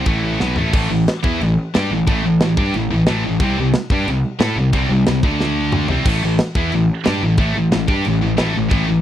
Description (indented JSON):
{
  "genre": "heavy metal",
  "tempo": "180 BPM",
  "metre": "4/4",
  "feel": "straight",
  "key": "A minor",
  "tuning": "A4 = 440 Hz",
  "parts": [
    { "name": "scooped high-gain guitar", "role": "riff", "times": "0.0-9.0 s", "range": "A2 to A4", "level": "-18 LUFS", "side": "equal", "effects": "distortion" },
    { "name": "fuzz picked electric bass", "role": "bass", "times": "0.0-9.0 s", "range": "A1 to A2", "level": "-21 LUFS", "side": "equal", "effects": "overdrive" },
    { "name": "tight metal drum kit", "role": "drums", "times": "0.1-8.8 s", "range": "crash cymbal, kick drum, ride cymbal, snare drum, toms", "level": "-20 LUFS", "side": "equal", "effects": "none" }
  ],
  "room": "little or no reverb",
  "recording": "dry, close 1970s-style studio recording",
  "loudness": "-15 LUFS",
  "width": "side -11 dB against mid",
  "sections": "0.7-6.1 A section; 6.1-9.0 A section",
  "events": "drum fill 0.4-0.7, 5.4-6.1",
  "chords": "0.1 A5; 3.4 C5; 5.2 D5; 5.9 C5; 6.1 A5",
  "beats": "0.07 0.41 | 0.74 1.07 1.41 1.74 | 2.07 2.41 2.74 3.07 | 3.40 3.74 4.07 4.40 | 4.73 5.07 5.40 5.73 | 6.06 6.40 6.73 7.06 | 7.39 7.72 8.06 8.39 | 8.72"
}